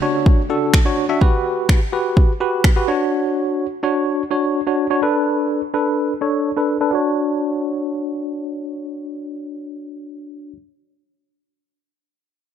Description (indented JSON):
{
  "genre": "dance-pop",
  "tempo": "126 BPM",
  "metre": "4/4",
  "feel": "straight",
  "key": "D major",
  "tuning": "A4 = 440 Hz",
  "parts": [
    { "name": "bell-like tine electric piano", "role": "accompaniment", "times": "0.0-10.6 s", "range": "D4 to E5", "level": "-19 LUFS", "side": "equal", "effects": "medium stereo tremolo, low-pass filter" },
    { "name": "deep house drum kit", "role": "drums", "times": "0.3-2.8 s", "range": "finger snaps, kick drum", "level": "-15 LUFS", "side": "equal", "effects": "none" }
  ],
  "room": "light reverb, digital ambience",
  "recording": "none",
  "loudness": "-16 LUFS",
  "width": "side -8 dB against mid",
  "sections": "0.0-6.9 A section; 6.9-10.7 B section",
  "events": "filter sweep on tine electric piano 0.0-6.9",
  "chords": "0.0 Dmaj7; 1.2 Gmaj7; 2.9 Dmaj7; 5.0 Bm7/D; 6.9 Dmaj7"
}